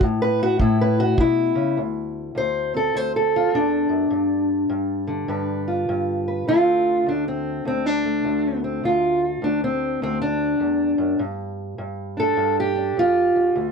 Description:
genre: acoustic country blues, solo or duo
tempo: 102 BPM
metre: 4/4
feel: swing 64% on 8ths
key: unclear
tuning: A4 = 441 Hz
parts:
  - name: fingerpicked steel-string acoustic guitar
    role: melody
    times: 0.0-13.7 s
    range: D2 to C5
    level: -19 LUFS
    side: equal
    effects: none
  - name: kick drum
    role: drums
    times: 0.0-1.4 s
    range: none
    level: -20 LUFS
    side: equal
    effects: none
room: little or no reverb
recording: dry, close 1970s-style studio recording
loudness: -19 LUFS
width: side -5 dB against mid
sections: 0.0-1.8 A section; 1.8-13.7 B section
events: steel-string acoustic guitar solo 0.0-1.8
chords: 0.0 A5; 1.8 D7(no3); 4.1 G7; 6.5 D7(no3); 11.2 G5

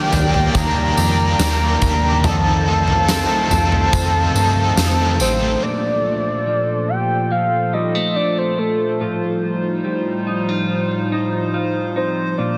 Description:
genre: dream pop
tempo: 71 BPM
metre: 4/4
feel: straight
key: Bb major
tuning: A4 = 439 Hz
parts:
  - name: soft octave-layered synth lead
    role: melody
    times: 0.0-12.6 s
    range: A4 to Bb5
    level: -22 LUFS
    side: equal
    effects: chorus, tape echo
  - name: biting overdriven guitar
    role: accompaniment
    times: 0.0-5.6 s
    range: Eb3 to A4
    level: -27 LUFS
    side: equal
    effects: tremolo, analog chorus
  - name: hollow soft pad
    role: sustained chords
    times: 0.0-12.6 s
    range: A2 to G5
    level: -25 LUFS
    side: equal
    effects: chorus
  - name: clean electric guitar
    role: arpeggios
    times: 0.0-12.6 s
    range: F2 to F4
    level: -26 LUFS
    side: equal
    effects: subtle chorus, tape echo
  - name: plucky analog bass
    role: bass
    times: 0.1-5.6 s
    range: A1 to G2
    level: -22 LUFS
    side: equal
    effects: none
  - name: huge arena drum kit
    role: drums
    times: 0.1-5.4 s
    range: kick drum, snare drum, tambourine, toms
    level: -24 LUFS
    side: equal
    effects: soft clipping on kick
  - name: large celesta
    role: texture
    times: 0.6-1.7 s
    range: none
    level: barely audible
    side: none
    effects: none
room: light reverb, small room ambience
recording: dense, heavily limited modern master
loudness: -18 LUFS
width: mono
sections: 0.0-5.6 A section; 5.6-12.6 B section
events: none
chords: 0.0 Ebmaj7; 2.2 F7; 5.6 Bbmaj7; 9.0 F9/A

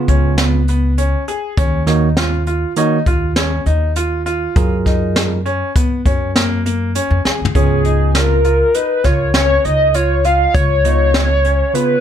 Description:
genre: progressive instrumental, band music in an uneven meter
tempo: 100 BPM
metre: 5/4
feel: straight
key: Db mixolydian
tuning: A4 = 440 Hz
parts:
  - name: barky tine electric piano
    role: accompaniment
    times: 0.0-12.0 s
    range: Db3 to Db5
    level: -19 LUFS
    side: right 6 dB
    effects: none
  - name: warm concert grand piano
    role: arpeggios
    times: 0.0-12.0 s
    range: Bb3 to Ab4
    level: -21 LUFS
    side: left 1 dB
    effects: none
  - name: upright bass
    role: bass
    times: 0.1-11.6 s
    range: Db2 to Gb2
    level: -17 LUFS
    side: equal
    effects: none
  - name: jazz brush drum kit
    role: drums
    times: 0.1-11.9 s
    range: hi-hat, kick drum, snare drum, toms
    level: -17 LUFS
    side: equal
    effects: none
  - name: hollow square lead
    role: melody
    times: 7.6-12.0 s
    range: Ab4 to F5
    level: -15 LUFS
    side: equal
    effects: chorus, ping-pong delay
room: light reverb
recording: none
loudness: -13 LUFS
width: side -9 dB against mid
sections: 0.0-7.5 A section; 7.5-12.0 B section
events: drum fill 7.3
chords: 0.0 Db7; 1.6 Ebm9; 4.6 Gbmaj9; 7.5 Db7

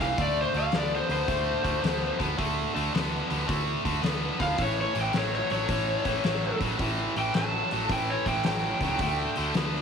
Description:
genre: blues rock power trio and southern rock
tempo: 109 BPM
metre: 4/4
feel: swing 66% on 8ths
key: unclear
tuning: A4 = 440 Hz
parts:
  - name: overdriven slide guitar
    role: melody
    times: 0.0-9.5 s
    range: C5 to A5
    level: -29 LUFS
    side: left 1 dB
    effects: none
  - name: tight distorted guitar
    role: riff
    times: 0.0-9.8 s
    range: G2 to B3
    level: -29 LUFS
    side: right 1 dB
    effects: distortion
  - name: hollow-body short-scale picked electric bass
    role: bass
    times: 0.0-9.8 s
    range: A1 to D2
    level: -33 LUFS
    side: right 1 dB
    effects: none
  - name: oversized low-tuned drum kit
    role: drums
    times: 0.0-9.8 s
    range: hi-hat, kick drum, snare drum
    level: -32 LUFS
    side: left 2 dB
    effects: none
room: light reverb, studio reverb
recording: 1960s-style stereo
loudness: -25 LUFS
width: side -6 dB against mid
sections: 0.0-9.8 A section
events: none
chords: 0.2 D5; 4.6 A7; 9.0 D5

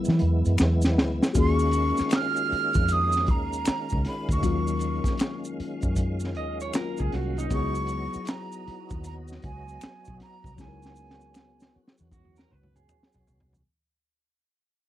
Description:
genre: R&B, neo-soul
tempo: 78 BPM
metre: 4/4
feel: swing 64% on 16ths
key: unclear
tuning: A4 = 441 Hz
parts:
  - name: tine electric piano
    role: accompaniment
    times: 0.0-13.7 s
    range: Gb3 to Bb4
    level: -32 LUFS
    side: left 6 dB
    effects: overdrive, phaser
  - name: tonewheel organ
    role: sustained chords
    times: 0.0-13.6 s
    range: Eb3 to F5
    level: -35 LUFS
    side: right 2 dB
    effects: overdrive, chorus vibrato, slow rotary speaker
  - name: maracas and finger snaps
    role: percussion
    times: 0.0-13.7 s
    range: none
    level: -38 LUFS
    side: left 2 dB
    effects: none
  - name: vintage muted fingered electric bass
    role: bass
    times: 0.1-13.6 s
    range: Cb2 to E3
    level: -26 LUFS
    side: equal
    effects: none
  - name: crunchy breakbeat drum kit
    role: drums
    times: 0.1-13.7 s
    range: handclaps, hi-hat, kick drum, snare drum, toms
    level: -26 LUFS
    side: equal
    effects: none
  - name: breathy mellow jazz flute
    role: melody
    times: 1.4-11.7 s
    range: Ab5 to F6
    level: -29 LUFS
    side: right 3 dB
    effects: slapback echo
  - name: electric guitar through a small old amp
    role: second line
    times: 6.4-13.6 s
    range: Eb4 to Eb5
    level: -35 LUFS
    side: right 5 dB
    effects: none
room: little or no reverb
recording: dry, close 1970s-style studio recording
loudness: -23 LUFS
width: side -13 dB against mid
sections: 0.0-13.7 A section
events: fade-out 0.0-13.7; drum fill 0.6-1.4, 10.6-13.7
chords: 0.0 Emaj7; 1.4 Ebm11; 7.5 Dbm11

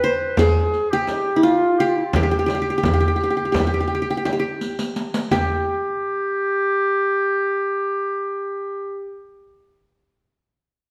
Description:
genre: Turkish makam ensemble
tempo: 170 BPM (eighths)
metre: 9/8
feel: straight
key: G makam hicaz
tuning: A4 = 444 Hz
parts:
  - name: qanun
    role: melody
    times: 0.0-9.7 s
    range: E4-40c to C5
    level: -23 LUFS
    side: equal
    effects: none
  - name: warm clarinet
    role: second line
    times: 0.0-9.2 s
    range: E4-41c to B4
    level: -25 LUFS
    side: equal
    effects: none
  - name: darbuka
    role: percussion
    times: 0.0-5.6 s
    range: none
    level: -27 LUFS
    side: equal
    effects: none
  - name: frame drum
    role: percussion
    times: 0.4-5.6 s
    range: none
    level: -28 LUFS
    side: equal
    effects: none
  - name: riq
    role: percussion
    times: 0.4-5.6 s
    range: none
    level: -31 LUFS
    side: equal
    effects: none
room: wet recital hall reverb, RT60 1.3 s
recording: none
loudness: -21 LUFS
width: mono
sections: 0.0-5.3 A section; 5.3-8.5 B section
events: drum fill 4.6-5.3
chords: none

